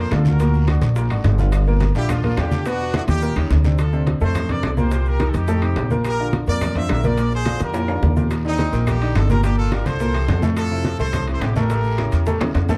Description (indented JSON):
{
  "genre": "latin, salsa",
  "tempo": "212 BPM",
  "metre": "4/4",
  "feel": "straight",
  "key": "D minor",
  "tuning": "A4 = 444 Hz",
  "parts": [
    { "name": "bright trumpet section", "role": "melody", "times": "0.0-12.5 s", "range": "C4 to E5", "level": "-29 LUFS", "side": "equal", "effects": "none" },
    { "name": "bright upright piano", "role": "accompaniment", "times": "0.0-12.8 s", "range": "A2 to B4", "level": "-27 LUFS", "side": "equal", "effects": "none" },
    { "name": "upright bass", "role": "bass", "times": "0.0-12.8 s", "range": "G1 to F2", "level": "-22 LUFS", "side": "equal", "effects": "none" },
    { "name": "bongos", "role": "percussion", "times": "0.1-12.8 s", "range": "none", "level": "-34 LUFS", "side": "equal", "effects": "none" },
    { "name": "claves", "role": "percussion", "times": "0.1-12.6 s", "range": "none", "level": "-42 LUFS", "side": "equal", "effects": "none" },
    { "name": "congas", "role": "percussion", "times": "0.1-12.8 s", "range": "none", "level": "-28 LUFS", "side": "equal", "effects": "none" },
    { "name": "guiro", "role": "percussion", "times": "0.1-3.8, 8.3-12.8 s", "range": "none", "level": "-45 LUFS", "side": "equal", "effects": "none" },
    { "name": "maracas", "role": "percussion", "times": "0.1-12.8 s", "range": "none", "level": "-52 LUFS", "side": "equal", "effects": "none" },
    { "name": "timbales", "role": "percussion", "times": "0.1-12.7 s", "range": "none", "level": "-34 LUFS", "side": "equal", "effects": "none" }
  ],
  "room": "light reverb",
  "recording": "dark, warm production",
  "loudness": "-19 LUFS",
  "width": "mono",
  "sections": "0.0-3.8 A section; 3.8-12.8 B section",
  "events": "drum fill 3.1-3.8, 7.7-8.3, 12.0-12.8",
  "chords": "0.4 Daug; 1.5 Gm7; 2.7 Esus2; 3.2 Eb6; 3.8 Dm7; 4.9 Cm7; 5.5 F9; 6.0 Bb6; 7.2 Bb13; 8.3 Ebmaj7; 9.4 Gm7; 10.0 C6; 10.6 Fmaj9; 11.7 A7b9"
}